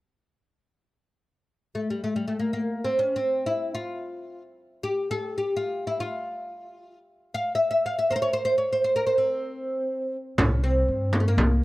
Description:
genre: Turkish makam ensemble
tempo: free time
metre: none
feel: none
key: C makam hicaz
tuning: A4 = 443 Hz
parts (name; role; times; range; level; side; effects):
- oud; melody; 1.7-11.6 s; G3 to F5; -25 LUFS; equal; none
- upright bass; bass; 10.4-11.6 s; C2 to G2; -22 LUFS; equal; none
- frame drum; percussion; 10.4-11.5 s; none; -24 LUFS; right 1 dB; none
room: small room ambience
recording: dry, close 1970s-style studio recording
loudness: -23 LUFS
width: side -18 dB against mid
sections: 1.4-10.4 A section; 10.4-11.6 B section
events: none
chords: none

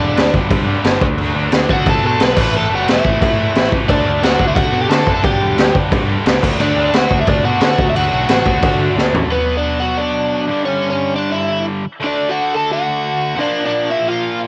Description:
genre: punk rock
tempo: 177 BPM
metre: 4/4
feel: straight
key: D major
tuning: A4 = 440 Hz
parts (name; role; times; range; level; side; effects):
- overdriven electric guitar; melody; 0.0-14.4 s; B3 to B5; -20 LUFS; equal; none
- distorted electric guitar; riff; 0.0-14.5 s; G2 to D4; -23 LUFS; equal; overdrive
- growling picked electric bass; bass; 0.0-9.3 s; E1 to D3; -23 LUFS; equal; overdrive
- raw garage drum kit; drums; 0.2-9.2 s; crash cymbal, kick drum, snare drum, toms; -18 LUFS; equal; cassette tape
room: little or no reverb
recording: home recording on cassette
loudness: -16 LUFS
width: mono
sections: 0.0-9.3 A section; 9.3-14.5 B section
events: drum fill 9.0-9.3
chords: 0.0 G5; 1.0 D; 2.4 A5; 3.9 D; 5.2 G5; 6.4 D; 9.3 Bm; 10.5 G5; 12.0 D; 13.4 Bb

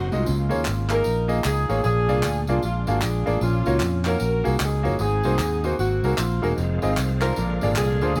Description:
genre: uptempo gospel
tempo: 152 BPM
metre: 4/4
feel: swing 63% on 8ths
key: Db major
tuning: A4 = 440 Hz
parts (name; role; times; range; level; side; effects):
- dark saxophone section; melody; 0.0-8.2 s; Ab3 to Bb4; -28 LUFS; equal; none
- clear grand piano; accompaniment; 0.0-8.2 s; Ab2 to F5; -29 LUFS; equal; none
- bright tonewheel organ; sustained chords; 0.0-0.1, 6.6-8.2 s; D3 to F4; -36 LUFS; equal; fast rotary speaker, overdrive, chorus vibrato
- fingered electric bass; bass; 0.0-8.2 s; Fb1 to F2; -26 LUFS; equal; none
- tambourine and handclaps; percussion; 0.1-8.2 s; none; -35 LUFS; equal; none
room: light reverb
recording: none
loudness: -23 LUFS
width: mono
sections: 0.3-8.2 A section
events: none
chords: 0.3 Db69; 1.8 Bb7; 3.4 Ebm9/Bb; 5.0 Ab9; 6.6 Fm7; 7.4 Bb7

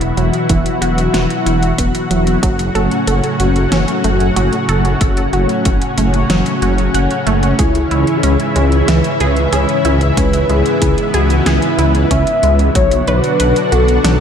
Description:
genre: synthwave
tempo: 93 BPM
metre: 4/4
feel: straight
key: F# minor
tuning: A4 = 439 Hz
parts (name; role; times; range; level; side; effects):
- analog string pad; sustained chords; 0.0-14.2 s; G#2 to F#4; -16 LUFS; left 1 dB; ensemble chorus, sidechain pumping, shimmer reverb
- wide unison pluck; arpeggios; 0.0-14.2 s; E3 to F#5; -21 LUFS; right 3 dB; tape echo, shimmer reverb
- wide detuned saw bass; bass; 0.0-14.2 s; E1 to C#2; -15 LUFS; equal; chorus, sidechain pumping
- pop drum kit; drums; 0.0-14.2 s; hi-hat, snare drum; -21 LUFS; equal; small room reverb
- electronic kick drum; drums; 0.5-12.9 s; none; -17 LUFS; equal; small room reverb
- warm velvety synth lead; melody; 7.6-14.2 s; E4 to E5; -17 LUFS; left 1 dB; chorus, tape echo, shimmer reverb
room: moderate plate reverb, RT60 2.2 s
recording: dreamy mix soaked in reverb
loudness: -11 LUFS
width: side -8 dB against mid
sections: 0.0-14.2 A section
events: none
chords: 0.0 Esus2; 2.4 F#m; 7.6 C#m; 12.8 Bm

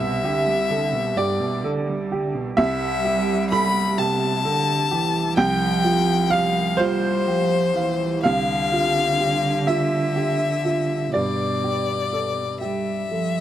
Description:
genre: neoclassical piano and strings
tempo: 42 BPM (dotted quarters)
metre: 6/8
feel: rubato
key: unclear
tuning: A4 = 441 Hz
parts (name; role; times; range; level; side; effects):
- rich violin; melody; 0.0-13.4 s; C5 to B5; -24 LUFS; left 6 dB; none
- rich cello; second line; 0.0-13.4 s; G2 to G3; -25 LUFS; right 3 dB; tape echo
- warm upright piano; accompaniment; 0.0-13.4 s; C2 to B5; -23 LUFS; right 3 dB; none
room: light reverb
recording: dry, close 1970s-style studio recording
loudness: -19 LUFS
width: side -11 dB against mid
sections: 0.0-13.4 A section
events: none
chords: 0.0 G/C; 2.6 Am7/C; 5.4 F5/C; 8.2 Dm7/C; 11.1 G

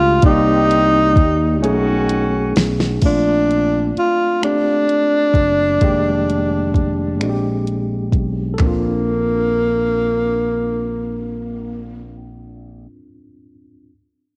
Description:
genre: slow six-eight R&B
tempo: 43 BPM (dotted quarters)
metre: 6/8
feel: straight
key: Bb major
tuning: A4 = 440 Hz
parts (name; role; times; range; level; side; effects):
- breathy tenor saxophone; melody; 0.0-12.2 s; Bb3 to F4; -19 LUFS; equal; none
- tine electric piano; accompaniment; 0.0-13.9 s; Eb3 to D5; -25 LUFS; equal; overdrive, cassette tape
- fretless electric bass; bass; 0.0-12.9 s; F1 to Eb2; -24 LUFS; equal; none
- bright horn section; stabs; 0.2-2.5 s; Eb3 to G4; -29 LUFS; equal; cassette tape
- smooth R&B drum kit; drums; 0.2-8.8 s; crash cymbal, finger snaps, handclaps, hi-hat, kick drum, snare drum, toms; -19 LUFS; equal; cassette tape
room: light reverb, digital ambience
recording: home recording on cassette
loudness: -17 LUFS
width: mono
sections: 0.0-3.0 A section; 3.0-8.6 B section; 8.6-11.4 C section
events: drum fill 1.6-3.0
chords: 0.2 Cm7; 1.6 B13; 3.0 Bbmaj7; 5.8 Fm11; 7.2 Bb13; 8.6 Bbmaj7

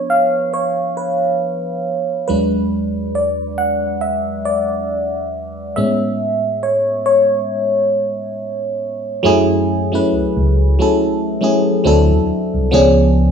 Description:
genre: R&B, neo-soul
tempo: 69 BPM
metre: 4/4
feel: swing 58% on 16ths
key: F# minor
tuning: A4 = 436 Hz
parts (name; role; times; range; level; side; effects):
- FM electric piano; accompaniment; 0.0-13.3 s; E#3 to F#5; -15 LUFS; equal; chorus, phaser
- tine electric piano; bass; 2.3-13.3 s; C2 to A2; -20 LUFS; equal; none
room: wet large studio reverb, RT60 1.1 s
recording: band playing live in one room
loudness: -14 LUFS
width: side -7 dB against mid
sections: 0.0-9.2 A section; 9.2-13.3 B section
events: FM electric piano solo 0.0-9.2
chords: 0.0 C#7b9/E#; 2.3 E7; 5.8 Amaj9; 9.2 F#m7; 11.8 D9; 12.7 C#7b9

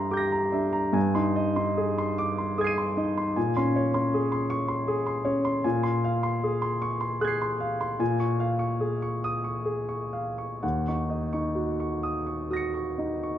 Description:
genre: classical, impressionist solo piano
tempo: 60-80 BPM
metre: 3/4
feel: rubato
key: unclear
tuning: A4 = 440 Hz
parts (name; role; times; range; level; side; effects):
- warm concert grand piano; solo; 0.0-13.4 s; Eb2 to Eb7; -25 LUFS; equal; none
room: wet recital hall reverb, RT60 1.7 s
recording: none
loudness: -25 LUFS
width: side -11 dB against mid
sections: 0.0-13.4 A section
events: none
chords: 0.0 Gm6; 1.0 Abmaj7/G; 3.4 Bbm9; 5.6 Ab13/Bb; 8.0 Bbm7; 10.6 Ebm7

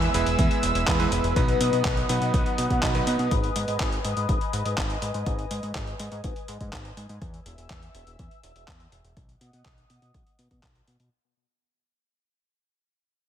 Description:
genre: italo disco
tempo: 123 BPM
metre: 4/4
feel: straight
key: unclear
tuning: A4 = 440 Hz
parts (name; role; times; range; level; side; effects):
- lush unison pad; sustained chords; 0.0-11.1 s; B4 to E6; -29 LUFS; left 3 dB; chorus, phaser
- bright electric grand piano; stabs; 0.0-3.3 s; F#3 to B4; -28 LUFS; right 5 dB; ping-pong delay
- fat analog bass; bass; 0.0-11.1 s; E1 to B2; -29 LUFS; equal; none
- dusty soul sampler-style drum kit; drums; 0.0-11.1 s; handclaps, hi-hat; -31 LUFS; left 1 dB; overdrive, gated reverb
- electronic kick drum; drums; 0.4-10.7 s; none; -28 LUFS; equal; none
room: light reverb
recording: none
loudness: -22 LUFS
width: side -10 dB against mid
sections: 0.0-11.1 A section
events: fade-out 0.0-11.1; filter sweep on analog synth pad 0.0-11.1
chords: 0.0 E; 1.4 B; 3.3 G#m; 7.2 E; 9.2 B

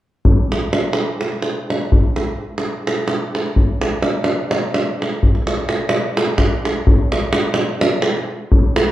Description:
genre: balkan folk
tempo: 254 BPM (eighths)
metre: 7/8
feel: straight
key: none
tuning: none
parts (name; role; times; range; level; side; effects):
- davul; percussion; 0.2-8.9 s; none; -16 LUFS; equal; none
room: wet large studio reverb, RT60 0.9 s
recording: band playing live in one room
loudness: -16 LUFS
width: side -14 dB against mid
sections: 0.2-6.9 A section; 6.9-8.9 B section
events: none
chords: none

